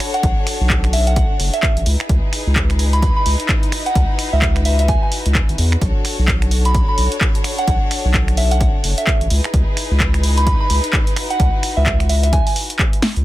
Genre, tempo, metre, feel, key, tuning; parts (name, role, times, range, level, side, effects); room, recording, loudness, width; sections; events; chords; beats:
UK garage, two-step garage; 129 BPM; 4/4; swing 60% on 16ths; A4 = 442 Hz
warm studio violin section; sustained chords; 0.0-13.2 s; D4 to C#5; -26 LUFS; left 2 dB; sidechain pumping
punchy analog drum machine; drums; 0.0-13.2 s; finger snaps, handclaps, hi-hat, snare drum; -22 LUFS; equal
soft synth bell; melody; 0.1-12.5 s; E5 to B5; -22 LUFS; right 1 dB; chorus, ping-pong delay
saturated sub bass; bass; 0.2-13.2 s; F#1 to E2; -16 LUFS; equal
electronic kick drum; drums; 0.2-12.9 s; -18 LUFS; equal
light reverb; dense, heavily limited modern master; -14 LUFS; side -16 dB against mid
0.0-13.2 A section
drop 0.0-13.2; drum fill 13.0
0.0 Bm7; 1.9 C#m7; 5.8 Bm7; 9.3 C#m7
| 0.23 0.70 1.16 1.63 | 2.09 2.56 3.02 3.49 | 3.96 4.42 4.88 5.35 | 5.82 6.28 6.75 7.21 | 7.68 8.14 8.61 9.07 | 9.54 10.00 10.47 10.93 | 11.40 11.86 12.33 12.79